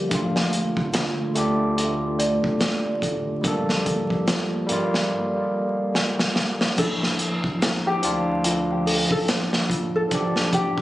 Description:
trip hop; 72 BPM; 4/4; swing 58% on 16ths; D minor; A4 = 439 Hz
overdriven tine electric piano; accompaniment; 0.0-10.8 s; F3 to A4; -25 LUFS; equal; harmonic tremolo, tape echo
warbly tape-like pad; sustained chords; 0.0-5.1 s; D3 to G4; -29 LUFS; right 1 dB; chorus, built-in reverb
large celesta; arpeggios; 0.0-10.8 s; D4 to D5; -31 LUFS; equal; tape echo
soft dub sub bass; bass; 0.0-10.7 s; D1 to G2; -36 LUFS; equal
crunchy breakbeat drum kit; drums; 0.1-10.8 s; crash cymbal, hi-hat, kick drum, snare drum; -24 LUFS; equal
felt-muted upright piano; melody; 6.8-10.8 s; G4 to A4; -27 LUFS; left 1 dB; dub echo
light reverb, studio reverb; recorded on a phone in the room, club reverb, vinyl crackle; -20 LUFS; side -15 dB against mid
0.0-6.8 A section; 6.8-10.8 B section
drum fill 5.9-6.8
0.1 Dm; 3.4 Gm7; 6.8 Dmadd9

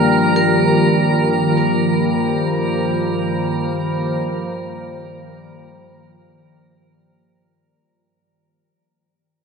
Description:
ambient; free time; A4 = 440 Hz
warbly tape-like pad; sustained chords; 0.0-7.7 s; G2 to Bb5; -18 LUFS; equal; chorus, built-in reverb
vibraphone with hard mallets; arpeggios; 0.0-7.7 s; Bb4; -26 LUFS; left 2 dB; tape echo
overtone-sweeping drone; drone; 0.0-7.8 s; G3; -24 LUFS; left 2 dB; chorus, built-in reverb
drifting glass-harmonics texture; texture; 0.0-7.7 s; Bb4 to Bb5; -23 LUFS; right 3 dB; chorus, built-in reverb
wet huge ambient reverb, RT60 8.4 s; dreamy mix soaked in reverb; -15 LUFS; side -5 dB against mid
0.0-7.7 A section
fade-out 0.0-7.7
0.0 Ebsus2/G

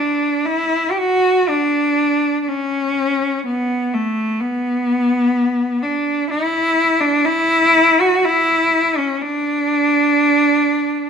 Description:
celtic folk; 56-65 BPM; 3/4; rubato; D major; A4 = 437 Hz
rich cello; solo; 0.0-11.1 s; A3 to G4; -14 LUFS; equal
moderate recital hall reverb, RT60 1.6 s; minimal, uncompressed stereo recording; -14 LUFS; side -6 dB against mid
0.4-11.1 A section

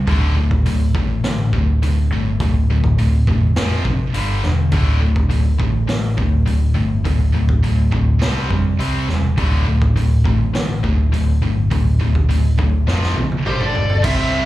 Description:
hard rock; 103 BPM; 4/4; straight; D minor; A4 = 441 Hz
high-gain distorted guitar; riff; 0.0-14.5 s; D2 to C4; -24 LUFS; right 5 dB; distortion
tight distorted guitar; riff; 0.0-14.5 s; D2 to C4; -23 LUFS; left 6 dB; distortion
hollow-body short-scale picked electric bass; bass; 0.0-14.4 s; D1 to C2; -17 LUFS; equal
raw garage drum kit; drums; 0.1-14.2 s; crash cymbal, hi-hat, kick drum, snare drum, toms; -21 LUFS; equal
smooth overdriven lead guitar; melody; 13.5-14.5 s; C5 to E5; -21 LUFS; equal
high-gain lead guitar; second line; 13.5-14.5 s; G4 to C5; -26 LUFS; right 3 dB; distortion, slapback echo
distorted electric guitar; riff; 14.0-14.5 s; C3 to C5; -24 LUFS; right 2 dB; overdrive, slapback echo
little or no reverb; live gig heard through the venue's PA, club reverb; -15 LUFS; side -16 dB against mid
0.0-14.0 A section
drum fill 12.9-14.0
0.1 D5; 3.6 F5; 4.1 G5; 4.7 D5; 8.2 C5; 9.4 D5; 12.9 F5; 13.5 G5

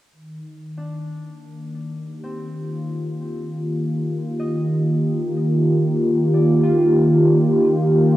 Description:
ambient; free time; Eb major; A4 = 439 Hz
warm analog pad; sustained chords; 0.1-8.2 s; Eb3 to G4; -18 LUFS; equal; lush chorus, cassette tape
concert harp; arpeggios; 0.8-8.2 s; C4 to Eb5; -36 LUFS; left 1 dB; cassette tape, analog delay
wet lush hall reverb, RT60 2.3 s; home recording on cassette; -17 LUFS; side -14 dB against mid
0.1-8.2 A section
fade-in on harp 0.1-8.2; filter sweep on analog synth pad 0.1-8.2
0.1 Eb

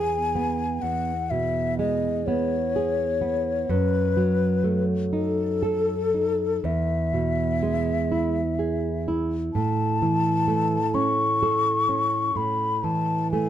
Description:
romantic duo for flute and classical guitar; 42 BPM (dotted quarters); 12/8; rubato; E major; A4 = 439 Hz
mellow hollow concert flute; melody; 0.0-13.5 s; A4 to C#6; -25 LUFS; left 4 dB
nylon-string guitar; accompaniment; 0.0-13.5 s; E2 to A4; -24 LUFS; right 2 dB
light reverb; close, detailed microphones; -22 LUFS; side -10 dB against mid
0.0-13.5 A section
0.0 E; 3.7 D#dim/F#; 6.6 E; 9.5 A

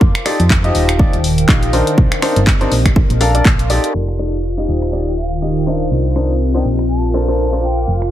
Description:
piano house; 122 BPM; 4/4; swing 57% on 16ths; A4 = 439 Hz
solid FM bass; bass; 0.0-8.1 s; Eb1 to F2; -17 LUFS; equal; sidechain pumping
electronic kick drum; drums; 0.0-3.6 s; -12 LUFS; equal
warbly tape-like pad; texture; 0.0-8.1 s; Eb3 to D6; -22 LUFS; left 1 dB; chorus, built-in reverb, sidechain pumping
house drum kit; drums; 0.2-8.1 s; crash cymbal, finger snaps, handclaps, hi-hat, tambourine; -20 LUFS; left 1 dB
clear grand piano; riff; 0.3-7.6 s; D4 to F5; -19 LUFS; left 1 dB; sidechain pumping, low-pass filter, ping-pong delay
string machine, violins; sustained chords; 3.9-8.1 s; F4 to F5; -25 LUFS; left 1 dB; ensemble chorus, sidechain pumping
hollow concert flute; melody; 5.2-7.9 s; F5 to A5; -29 LUFS; right 1 dB; ping-pong delay
light reverb; heavily compressed radio sound, low-pass filter; -12 LUFS; side -12 dB against mid
0.0-3.9 A section; 3.9-8.1 B section
filter sweep 3.9-8.1
0.0 F13; 0.7 Ebmaj9; 2.0 Cm9; 2.7 Bbmaj9; 3.9 F13; 4.7 Ebmaj9; 5.9 Cm9; 6.7 Bbmaj9

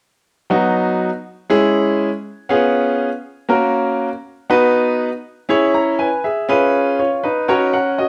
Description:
soul; 120 BPM; 4/4; straight; B major; A4 = 438 Hz
clear baby grand piano; accompaniment; 0.5-8.1 s; F#3 to A#5; -17 LUFS; equal
moderate large studio reverb, RT60 0.8 s; band playing live in one room; -17 LUFS; mono
0.5-8.1 A section
0.5 B; 1.5 C#m; 2.5 C#7; 3.5 F#; 4.5 B; 5.5 C#m; 6.5 C#7; 7.5 F#

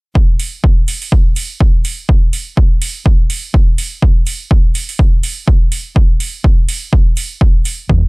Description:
piano house; 124 BPM; 4/4; swing 57% on 16ths; A4 = 438 Hz
electronic kick drum; drums; 0.2-8.0 s; -10 LUFS; equal; overdrive
electronic hi-hat; drums; 0.4-7.8 s; -22 LUFS; right 5 dB
hollow-body short-scale fingered electric bass; bass; 7.9-8.0 s; E2; -11 LUFS; equal; sidechain pumping
little or no reverb; -11 LUFS; side -32 dB against mid
0.2-8.1 A section

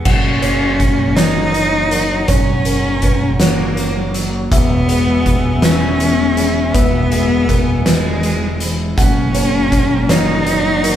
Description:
post-rock; 54 BPM (dotted quarters); 6/8; straight; A4 = 441 Hz
clear cello; melody; 0.0-11.0 s; G#3 to D#4; -18 LUFS; left 1 dB
warbly tape-like pad; sustained chords; 0.0-11.0 s; B3 to E6; -26 LUFS; left 3 dB; chorus, built-in reverb
electric guitar through a small old amp; arpeggios; 0.0-11.0 s; E2 to C#4; -24 LUFS; equal
felt-muted upright piano; arpeggios; 0.0-11.0 s; G#4 to F#5; -25 LUFS; right 5 dB
growling picked electric bass; bass; 0.1-11.0 s; E1 to F#1; -21 LUFS; right 1 dB; overdrive
oversized low-tuned drum kit; drums; 0.1-11.0 s; crash cymbal, hi-hat, kick drum, snare drum; -16 LUFS; equal
moderate large studio reverb, RT60 1.3 s; band playing live in one room; -12 LUFS; side -10 dB against mid
0.1-11.0 A section
0.1 F#; 4.5 E; 9.0 F#

